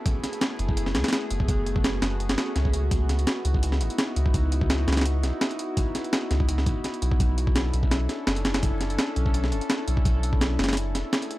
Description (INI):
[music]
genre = drum and bass, jungle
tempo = 168 BPM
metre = 4/4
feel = straight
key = C# minor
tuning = A4 = 440 Hz
[part]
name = warbly tape-like pad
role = sustained chords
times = 0.0-11.4 s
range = A3 to A4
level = -31 LUFS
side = left 1 dB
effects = chorus, built-in reverb
[part]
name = breakbeat sampler-style drum kit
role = drums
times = 0.1-11.4 s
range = hi-hat, kick drum, snare drum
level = -25 LUFS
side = equal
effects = small room reverb
[part]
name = soft dub sub bass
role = bass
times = 0.6-11.0 s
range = E1 to C#2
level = -25 LUFS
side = equal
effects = none
[part]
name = swell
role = sound effects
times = 2.4-2.9 s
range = none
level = -39 LUFS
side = right 4 dB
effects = none
[sound]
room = little or no reverb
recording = dry, gritty hardware recording, vinyl crackle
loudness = -22 LUFS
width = side -17 dB against mid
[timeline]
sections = 0.0-11.4 A section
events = swell 2.4-2.9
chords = 0.0 F#m11; 2.9 C#m11; 7.2 Bm11; 10.8 F#m11